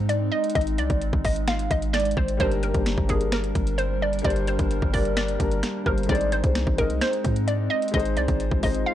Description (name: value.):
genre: hip hop, trap.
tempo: 130 BPM.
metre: 4/4.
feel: half-time.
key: unclear.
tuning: A4 = 440 Hz.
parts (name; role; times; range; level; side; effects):
hollow square pluck; melody; 0.0-8.9 s; Ab4 to F5; -27 LUFS; right 1 dB; chorus, low-pass filter.
warbly tape-like pad; sustained chords; 0.0-8.9 s; G3 to Bb4; -32 LUFS; right 1 dB; chorus, built-in reverb, phaser.
hard-hitting 808-style bass; bass; 0.0-8.8 s; G1 to Ab2; -26 LUFS; equal; none.
trap drum kit; drums; 0.1-8.9 s; finger snaps, hi-hat, kick drum, snare drum; -27 LUFS; equal; overdrive, vintage 12-bit sampler grit.
dark concert grand piano; accompaniment; 2.4-8.9 s; G3 to Eb5; -29 LUFS; left 4 dB; low-pass filter.
room: little or no reverb.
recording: dry, gritty hardware recording.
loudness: -21 LUFS.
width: side -12 dB against mid.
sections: 0.0-8.9 A section.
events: none.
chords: 0.0 Ab; 2.4 Gm; 6.1 Ab.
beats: 0.09 | 0.55 1.01 1.48 1.94 | 2.40 2.86 3.32 3.78 | 4.25 4.71 5.17 5.63 | 6.09 6.55 7.01 7.48 | 7.94 8.40 8.86.